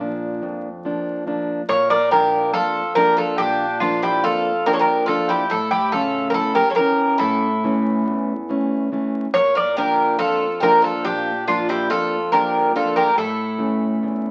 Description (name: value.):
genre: greek folk, Greek bouzouki band.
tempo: 141 BPM (eighths).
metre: 9/8.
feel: straight.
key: unclear.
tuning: A4 = 440 Hz.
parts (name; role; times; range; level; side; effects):
Greek bouzouki; melody; 0.0-14.3 s; F4 to D5; -21 LUFS; equal; none.
Greek bouzouki; second line; 0.0-14.3 s; F3 to Bb4; -26 LUFS; equal; none.
fingerpicked plugged-in steel-string acoustic guitar; accompaniment; 0.0-14.3 s; E2 to D4; -26 LUFS; equal; none.
room: wet studio reverb, RT60 0.7 s.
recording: very old 78 rpm record, vinyl crackle.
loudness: -20 LUFS.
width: mono.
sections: 0.0-1.7 A section; 1.7-14.3 B section.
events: none.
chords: 0.0 Bb; 5.5 A; 9.3 Bb; 13.2 A.